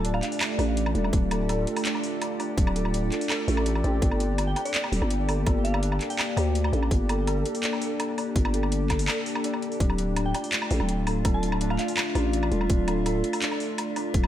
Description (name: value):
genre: half-time drum and bass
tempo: 166 BPM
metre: 4/4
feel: half-time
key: D minor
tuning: A4 = 440 Hz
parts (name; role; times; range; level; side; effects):
- soft synth bell; melody; 0.0-0.3, 4.5-6.4, 10.3-11.9 s; D5 to A5; -37 LUFS; right 1 dB; chorus, analog delay
- dark analog pad; sustained chords; 0.0-14.3 s; A3 to D5; -30 LUFS; equal; chorus, phaser, sidechain pumping
- santur; arpeggios; 0.0-14.3 s; A3 to A4; -34 LUFS; right 2 dB; analog delay
- growling 808-style bass; bass; 0.0-14.3 s; D1 to D2; -25 LUFS; equal; none
- drum and bass drum kit; drums; 0.0-14.3 s; handclaps, hi-hat, woodblock; -31 LUFS; equal; none
- metallic inharmonic drone; texture; 0.0-14.3 s; F4 to G4; -37 LUFS; left 1 dB; chorus, built-in reverb
- electronic kick drum; drums; 1.1-14.2 s; none; -24 LUFS; equal; none
room: light reverb, digital ambience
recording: none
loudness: -23 LUFS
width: side -11 dB against mid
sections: 0.0-14.3 A section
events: break 9.1-9.8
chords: 0.0 Dm; 4.0 Gm; 9.8 Dm